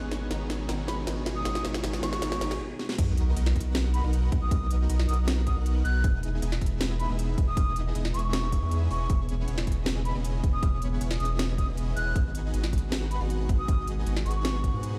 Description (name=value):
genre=future bass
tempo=157 BPM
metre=4/4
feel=half-time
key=G# minor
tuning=A4 = 442 Hz
part: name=tine electric piano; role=accompaniment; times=0.0-2.5 s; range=D#3 to D#4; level=-40 LUFS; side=equal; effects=phaser, sidechain pumping, delay
part: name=airy breathy pad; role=sustained chords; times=0.0-15.0 s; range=B2 to A#4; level=-44 LUFS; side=equal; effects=none
part: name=dense compressed supersaw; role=riff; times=0.0-15.0 s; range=B3 to F#5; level=-40 LUFS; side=equal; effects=sidechain pumping
part: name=saturated sub bass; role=bass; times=0.0-15.0 s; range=E1 to G#2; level=-30 LUFS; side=equal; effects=sidechain pumping
part: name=riser and sub drop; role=sound effects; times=0.9-4.5 s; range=none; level=-40 LUFS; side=equal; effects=none
part: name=trap drum kit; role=drums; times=0.1-14.9 s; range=crash cymbal, hi-hat, snare drum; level=-36 LUFS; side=equal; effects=none
part: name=wooden flute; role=melody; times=0.9-14.9 s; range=B5 to F#6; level=-38 LUFS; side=equal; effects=sidechain pumping, tape echo
part: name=electronic kick drum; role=drums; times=3.0-14.7 s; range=none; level=-28 LUFS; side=equal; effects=none
room=light reverb, digital ambience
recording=played on a big sound system in a bare room, stone room reverb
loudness=-28 LUFS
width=mono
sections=0.0-3.0 A section; 3.0-15.0 B section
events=build-up 0.0-3.0; drum fill 0.0-2.6, 2.8; break 2.6-3.0, 14.8; drop 3.0-15.0; impact 3.0-4.5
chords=0.0 G#m7; 3.0 Bmaj7; 6.0 Emaj7; 8.9 C#m7/E; 12.2 G#m7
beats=0.31 0.69 1.07 | 1.45 1.84 2.22 2.60 | 2.98 3.37 3.75 4.13 | 4.51 4.89 5.28 5.66 | 6.04 6.42 6.80 7.19 | 7.57 7.95 8.33 8.71 | 9.10 9.48 9.86 10.24 | 10.63 11.01 11.39 11.77 | 12.15 12.54 12.92 13.30 | 13.68 14.07 14.45 14.83